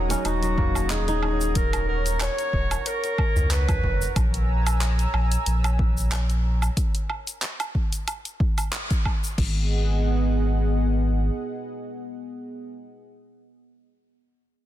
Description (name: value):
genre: organic downtempo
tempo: 92 BPM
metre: 4/4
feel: swing 55% on 16ths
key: G# minor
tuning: A4 = 440 Hz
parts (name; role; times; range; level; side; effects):
- bell-like tine electric piano; accompaniment; 0.0-1.6 s; F#3 to C#5; -34 LUFS; moving between left 4 dB and right 6 dB; auto-pan, sidechain pumping, tape echo
- warm analog pad; sustained chords; 0.0-12.8 s; B3 to E6; -32 LUFS; equal; chorus, sidechain pumping
- kora; arpeggios; 0.0-2.8 s; F#3 to D#4; -30 LUFS; equal; tape echo
- warm sub bass; bass; 0.0-11.3 s; D#1 to C#2; -23 LUFS; equal; none
- deep house drum kit; drums; 0.1-9.5 s; crash cymbal, handclaps, hi-hat, shaker, woodblock; -30 LUFS; right 1 dB; none
- darbuka; percussion; 0.1-4.0 s; none; -32 LUFS; equal; none
- mellow clarinet; melody; 0.3-4.2 s; F#4 to C#5; -29 LUFS; equal; digital delay
- electronic kick drum; drums; 0.6-9.5 s; none; -24 LUFS; equal; none
room: little or no reverb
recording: dense, heavily limited modern master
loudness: -21 LUFS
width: side -13 dB against mid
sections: 0.0-9.4 A section; 9.4-12.0 B section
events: band accent 8.7-9.1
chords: 0.0 D#m7; 4.2 A#m7b5; 9.4 G#m7